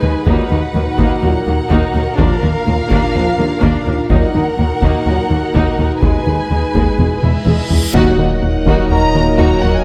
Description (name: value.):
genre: cinematic, hybrid orchestral and electronic film score.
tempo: 125 BPM.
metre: 4/4.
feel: straight.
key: Eb minor.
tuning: A4 = 442 Hz.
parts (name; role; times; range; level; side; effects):
warm symphonic violin section; second line; 0.0-9.7 s; Eb4 to Ab5; -24 LUFS; equal; none.
rich symphonic viola section; accompaniment; 0.0-9.7 s; Ab3 to Ab4; -24 LUFS; equal; none.
airy breathy pad; sustained chords; 0.0-9.8 s; Bb2 to Bb5; -24 LUFS; equal; chorus.
plucky analog bass; riff; 0.0-9.8 s; Eb2 to Eb3; -20 LUFS; equal; none.
dark symphonic double bass section; bass; 0.0-9.7 s; E1 to Eb2; -24 LUFS; equal; none.
warm symphonic cello section; bass; 0.0-9.7 s; Eb2 to E2; -24 LUFS; equal; none.
warm trombone section; sustained chords; 0.3-9.8 s; Bb2 to Ab3; -25 LUFS; equal; none.
taiko ensemble; drums; 0.3-9.8 s; none; -22 LUFS; equal; none.
reverse cymbal and impact; sound effects; 7.4-9.8 s; none; -28 LUFS; equal; none.
clear symphonic violin section; melody; 7.2-9.8 s; E5 to Bb5; -25 LUFS; equal; none.
dark French horn section; sustained chords; 7.9-9.8 s; Bb3 to Eb4; -24 LUFS; equal; none.
sub bass with octave; bass; 7.9-9.8 s; Eb1; -23 LUFS; equal; none.
room: moderate scoring stage reverb, RT60 1.8 s.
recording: none.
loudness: -14 LUFS.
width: mono.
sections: 0.0-7.9 A section; 7.9-9.8 B section.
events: build-up 0.0-7.9; drum fill 7.2-7.9; reverse cymbal 7.4-7.9; band accent 7.9-8.4; impact 7.9-9.8.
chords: 0.3 Ebm; 2.2 Bb/Eb; 4.1 Ebm; 6.0 Abm/Eb; 7.0 E; 7.9 Ebm.